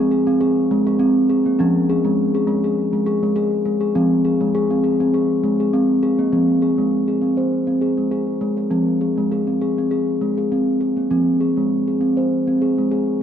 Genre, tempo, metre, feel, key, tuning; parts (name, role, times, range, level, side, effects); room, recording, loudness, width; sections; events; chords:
world meditative, meditative tuned percussion; 101 BPM; 4/4; swing 54% on 16ths; F minor; A4 = 438 Hz
steel tongue drum; solo; 0.0-13.2 s; F3 to C5; -16 LUFS; equal; tape echo
wet church reverb, RT60 3.3 s; dark, warm production, nothing above 10.5 kHz; -16 LUFS; side -9 dB against mid
0.0-6.3 A section; 6.3-13.2 B section
0.0 Fm; 1.6 Db/F; 4.0 Fm